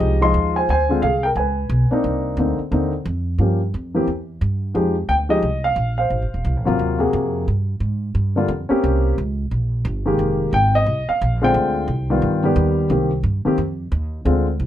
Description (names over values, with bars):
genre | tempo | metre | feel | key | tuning
jazz piano trio | 177 BPM | 4/4 | swing 63% on 8ths | C minor | A4 = 440 Hz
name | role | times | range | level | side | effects
dark grand piano | melody | 0.0-14.5 s | C3 to C6 | -19 LUFS | left 1 dB | none
upright bass | bass | 0.0-14.7 s | Eb1 to Ab2 | -21 LUFS | right 1 dB | none
room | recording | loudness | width
light reverb | none | -17 LUFS | side -12 dB against mid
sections
0.0-4.8 A section; 4.8-14.7 B section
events
none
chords
0.0 Fm9; 0.7 Dm7b5; 1.4 Db5; 2.0 Cm9; 3.4 Gm7b5; 4.1 Em; 4.8 Fm9; 6.1 Am7b5; 6.8 Ab13; 7.5 G7(no3); 8.8 C5; 10.2 Fm11; 11.5 Dm7b5; 12.2 Gaug7; 12.9 Cm7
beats
0.01 0.34 | 0.68 1.02 1.36 1.70 | 2.04 2.38 2.72 3.06 | 3.40 3.73 4.07 4.41 | 4.75 5.09 5.43 5.77 | 6.11 6.45 6.79 7.13 | 7.47 7.81 8.15 8.49 | 8.83 9.17 9.51 9.85 | 10.19 10.53 10.87 11.21 | 11.54 11.88 12.22 12.56 | 12.90 13.25 13.59 13.93 | 14.27 14.61